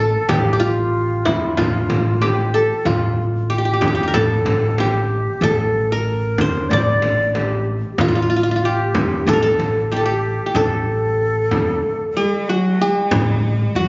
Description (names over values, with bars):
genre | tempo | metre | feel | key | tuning
Arabic maqam ensemble | 94 BPM | 4/4 | straight | A maqam kurd | A4 = 440 Hz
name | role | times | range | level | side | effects
qanun | melody | 0.0-13.9 s | E4 to D5 | -20 LUFS | equal | none
bright alto flute | second line | 0.0-12.5 s | F4 to D5 | -22 LUFS | equal | none
upright bass | bass | 0.0-13.9 s | A1 to E2 | -21 LUFS | equal | none
frame drum | percussion | 0.3-13.3 s | none | -22 LUFS | equal | none
warm chamber cello section | second line | 12.1-13.9 s | F#3 to A3 | -21 LUFS | equal | none
room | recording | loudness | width
moderate recital hall reverb, RT60 1.3 s | recorded on a phone in the room, club reverb, nothing above 7.6 kHz | -15 LUFS | side -26 dB against mid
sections
0.0-13.1 A section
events
none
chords
none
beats
| 0.29 0.94 1.57 2.21 | 2.85 3.50 4.13 4.78 | 5.42 6.05 6.70 7.34 | 7.98 8.62 9.26 9.90 | 10.54 11.19 11.83 12.47 | 13.11 13.75